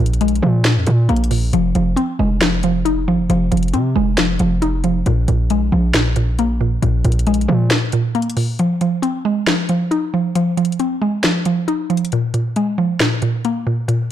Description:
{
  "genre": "hip hop, trap",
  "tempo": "136 BPM",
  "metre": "4/4",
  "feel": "half-time",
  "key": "F minor",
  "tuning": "A4 = 440 Hz",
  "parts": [
    { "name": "mallet-like synth pluck", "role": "accompaniment", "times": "0.0-14.1 s", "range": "Bb2 to Eb4", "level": "-17 LUFS", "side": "equal", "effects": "chorus" },
    { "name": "hard-hitting 808-style bass", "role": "bass", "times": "0.0-7.7 s", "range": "F1 to C3", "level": "-18 LUFS", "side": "equal", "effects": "none" },
    { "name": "trap drum kit", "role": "drums", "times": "0.1-14.0 s", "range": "hi-hat, snare drum", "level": "-21 LUFS", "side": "right 1 dB", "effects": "none" }
  ],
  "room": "little or no reverb",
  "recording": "blown-out, overdriven recording, overdrive",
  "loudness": "-15 LUFS",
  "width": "side -11 dB against mid",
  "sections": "0.0-8.6 A section; 8.6-14.1 B section",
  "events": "break 7.7-8.6; kick muted 8.6-14.1",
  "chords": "0.0 Bb5; 1.5 Fm7; 5.1 Bb5; 8.6 Fm7; 12.1 Bb5"
}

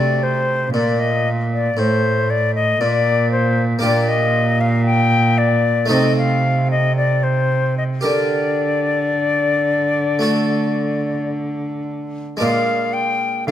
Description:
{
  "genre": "classical, baroque-style sonata movement with continuo",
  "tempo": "54-58 BPM",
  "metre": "4/4",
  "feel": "rubato",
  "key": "G minor",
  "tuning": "A4 = 440 Hz",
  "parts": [
    { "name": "silver concert flute", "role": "melody", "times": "0.0-13.5 s", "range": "C5 to G5", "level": "-19 LUFS", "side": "left 4 dB", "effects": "none" },
    { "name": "harpsichord", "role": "accompaniment", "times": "0.0-13.5 s", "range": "A2 to Bb4", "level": "-22 LUFS", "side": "right 2 dB", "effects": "none" },
    { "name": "rich cello", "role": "bass", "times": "0.0-13.5 s", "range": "A2 to D3", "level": "-20 LUFS", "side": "right 2 dB", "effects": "none" }
  ],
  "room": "light reverb",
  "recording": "close, detailed microphones",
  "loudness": "-15 LUFS",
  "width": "side -11 dB against mid",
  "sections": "0.0-12.4 A section; 12.4-13.5 B section",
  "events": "none",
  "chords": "0.0 D7; 3.8 Gm/Bb; 5.9 Adim/C; 8.0 Gm/D; 10.2 D; 12.4 Bb7"
}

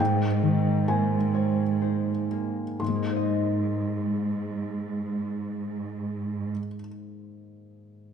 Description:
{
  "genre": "cinematic",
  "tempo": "59-70 BPM",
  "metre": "3/4",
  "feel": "rubato",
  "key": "Ab major",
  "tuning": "A4 = 440 Hz",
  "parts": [
    { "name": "felt-muted upright piano", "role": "accompaniment", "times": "0.0-8.1 s", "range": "Ab2 to C6", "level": "-30 LUFS", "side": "left 2 dB", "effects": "none" },
    { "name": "concert harp", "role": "arpeggios", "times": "0.0-6.9 s", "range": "Ab2 to Eb5", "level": "-33 LUFS", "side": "left 7 dB", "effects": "none" },
    { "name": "warm studio cello section", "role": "bass", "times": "0.0-6.5 s", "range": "Ab2", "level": "-27 LUFS", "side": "right 4 dB", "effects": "none" }
  ],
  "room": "moderate scoring stage reverb, RT60 1.9 s",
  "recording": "minimal, uncompressed stereo recording",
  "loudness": "-25 LUFS",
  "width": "side -7 dB against mid",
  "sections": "0.0-2.8 A section; 2.8-5.7 B section",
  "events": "slowing down 0.0-2.8",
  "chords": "0.0 Abadd9"
}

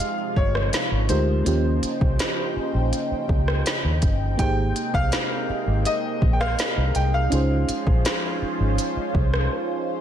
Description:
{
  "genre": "contemporary R&B",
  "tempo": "82 BPM",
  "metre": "4/4",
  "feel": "straight",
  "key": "unclear",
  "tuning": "A4 = 440 Hz",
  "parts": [
    { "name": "clear baby grand piano", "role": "melody", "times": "0.0-9.8 s", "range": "C5 to G5", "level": "-29 LUFS", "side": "left 1 dB", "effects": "digital delay" },
    { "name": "mellow FM electric piano", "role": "accompaniment", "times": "0.0-10.0 s", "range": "Ab3 to Eb5", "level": "-29 LUFS", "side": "right 2 dB", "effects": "chorus" },
    { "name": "lush unison pad", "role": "sustained chords", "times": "0.0-10.0 s", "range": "C3 to G5", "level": "-29 LUFS", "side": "equal", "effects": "chorus, phaser, sidechain pumping" },
    { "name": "smooth R&B drum kit", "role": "drums", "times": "0.0-9.5 s", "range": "hi-hat, kick drum, rim click, snare drum", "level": "-24 LUFS", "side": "equal", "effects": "none" },
    { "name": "vintage muted fingered electric bass", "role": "bass", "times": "0.4-9.5 s", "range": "G1 to Eb2", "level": "-23 LUFS", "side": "equal", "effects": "none" }
  ],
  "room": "digital ambience",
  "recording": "none",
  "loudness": "-20 LUFS",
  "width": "side -10 dB against mid",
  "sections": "0.0-10.0 A section",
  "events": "break 9.5-10.0",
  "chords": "0.0 Fm7; 1.5 Eb13; 4.4 Abmaj9; 7.3 Dbmaj7"
}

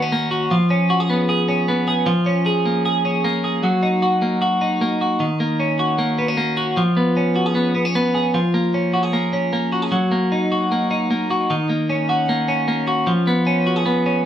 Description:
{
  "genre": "indie pop",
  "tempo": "153 BPM",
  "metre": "4/4",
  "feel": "straight",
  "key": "F# major",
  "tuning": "A4 = 440 Hz",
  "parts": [
    { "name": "twelve-string electric guitar", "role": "solo", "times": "0.0-14.3 s", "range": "D#3 to G#4", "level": "-17 LUFS", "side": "equal", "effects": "none" }
  ],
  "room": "wet small room reverb, RT60 0.5 s",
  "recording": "band playing live in one room, vinyl crackle",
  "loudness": "-17 LUFS",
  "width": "side -10 dB against mid",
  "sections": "0.0-5.2 A section; 5.2-14.3 B section",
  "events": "none",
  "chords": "0.0 F#6; 0.5 C#7; 2.1 A#m7; 3.6 F#6; 6.8 C#7; 8.3 A#m7; 9.9 F#6; 13.1 C#7"
}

